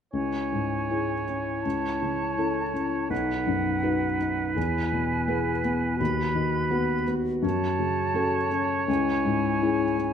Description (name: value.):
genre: cinematic, emotional film score for orchestra.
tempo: 82 BPM.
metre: 4/4.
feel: rubato.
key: unclear.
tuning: A4 = 440 Hz.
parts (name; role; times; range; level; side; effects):
clear oboe; second line; 0.1-10.1 s; B4 to C#5; -31 LUFS; right 5 dB; none.
silver concert flute; second line; 0.1-10.1 s; F#5 to B5; -32 LUFS; right 1 dB; none.
warm clarinet; second line; 0.1-10.1 s; D#4 to F#4; -31 LUFS; right 1 dB; none.
felt-muted upright piano; accompaniment; 0.1-10.1 s; B1 to B4; -26 LUFS; left 3 dB; none.
room: moderate recital hall reverb, RT60 1.5 s.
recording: close, detailed microphones.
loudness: -24 LUFS.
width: side -8 dB against mid.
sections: 0.1-10.1 A section.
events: none.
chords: 0.1 C#m; 1.6 A/C#; 3.1 B; 4.6 E; 6.0 B/D#; 7.4 F#m; 8.9 C#m.